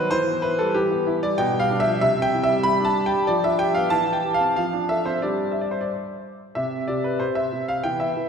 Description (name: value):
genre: classical-period piano sonatina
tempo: 94 BPM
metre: 2/4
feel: straight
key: C major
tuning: A4 = 440 Hz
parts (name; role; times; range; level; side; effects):
- clear grand piano; solo; 0.0-8.3 s; B2 to B5; -20 LUFS; equal; none
room: wet concert hall reverb, RT60 2.2 s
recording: recorded in a church or concert hall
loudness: -20 LUFS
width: side -6 dB against mid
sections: 0.0-6.6 A section; 6.6-8.3 B section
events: none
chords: 0.1 Em; 1.4 G7/B; 2.0 C; 2.6 G5; 3.3 G7/F; 3.9 C/E; 4.6 Dm7/F; 5.2 G5; 6.6 C5